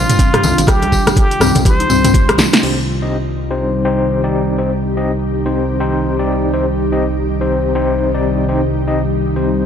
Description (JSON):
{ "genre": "afro house", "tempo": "123 BPM", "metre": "4/4", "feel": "swing 60% on 16ths", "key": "C minor", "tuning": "A4 = 440 Hz", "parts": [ { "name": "trumpet with plunger mute", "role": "melody", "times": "0.0-2.3 s", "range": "F4 to C5", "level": "-19 LUFS", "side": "equal", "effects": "tape echo" }, { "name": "ethereal airy pad", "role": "sustained chords", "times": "0.0-9.7 s", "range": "C3 to G4", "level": "-19 LUFS", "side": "right 1 dB", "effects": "ensemble chorus, built-in reverb, sidechain pumping" }, { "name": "smooth gliding synth bass", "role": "bass", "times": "0.0-9.7 s", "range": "G1 to C2", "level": "-20 LUFS", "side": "equal", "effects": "sidechain pumping" }, { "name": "deep house drum kit", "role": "drums", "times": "0.1-2.7 s", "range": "crash cymbal, hi-hat, rim click, snare drum, toms", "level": "-16 LUFS", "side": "equal", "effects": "overdrive" }, { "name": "congas", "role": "percussion", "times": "0.1-2.6 s", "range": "none", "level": "-21 LUFS", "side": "left 1 dB", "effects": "none" }, { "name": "tambourine", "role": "percussion", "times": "0.1-2.6 s", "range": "none", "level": "-24 LUFS", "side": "left 4 dB", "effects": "none" }, { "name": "mallet-like synth pluck", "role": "arpeggios", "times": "0.2-2.6 s", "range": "C4 to G4", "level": "-20 LUFS", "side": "left 6 dB", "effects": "lush chorus, sidechain pumping, tape echo" }, { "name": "electronic kick drum", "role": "drums", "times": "0.2-2.3 s", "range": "none", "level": "-13 LUFS", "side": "equal", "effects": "none" }, { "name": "overdriven tine electric piano", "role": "stabs", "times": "2.6-9.7 s", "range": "C4 to Eb5", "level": "-19 LUFS", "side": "left 3 dB", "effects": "fast tremolo, sidechain pumping, low-pass filter, tape echo" } ], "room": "light reverb, digital ambience", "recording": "dry, gritty hardware recording, transformer saturation", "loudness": "-12 LUFS", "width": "side -8 dB against mid", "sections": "0.0-2.6 A section; 2.6-9.7 B section", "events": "drum fill 2.4", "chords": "0.0 Cm" }